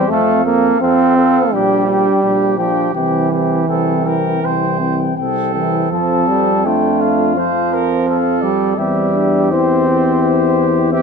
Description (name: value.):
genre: classical, brass quintet.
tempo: 83 BPM.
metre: 4/4.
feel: uneven beats, rubato.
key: F major.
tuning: A4 = 436 Hz.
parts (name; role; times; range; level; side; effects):
mellow cornet; melody; 0.0-11.0 s; C5 to A5; -20 LUFS; left 12 dB; none.
warm trumpet; second line; 0.0-11.0 s; F4 to C5; -22 LUFS; right 8 dB; none.
bright trombone; accompaniment; 0.0-10.9 s; E3 to C4; -16 LUFS; right 3 dB; none.
mellow French horn; accompaniment; 0.0-11.0 s; C4 to E4; -21 LUFS; left 6 dB; none.
clear tuba; bass; 0.1-11.0 s; Bb1 to F2; -20 LUFS; right 5 dB; none.
room: moderate recital hall reverb, RT60 1.4 s.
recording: close, detailed microphones.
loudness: -12 LUFS.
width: side -5 dB against mid.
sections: 0.0-11.0 A section.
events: none.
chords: 0.1 F; 1.5 Gm/Bb; 2.9 C; 5.9 F; 8.8 C/E.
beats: | 0.10 0.81 1.52 2.23 | 2.95 3.70 4.45 5.19 | 5.93 6.66 7.37 8.08 | 8.78 9.52 10.23 10.93.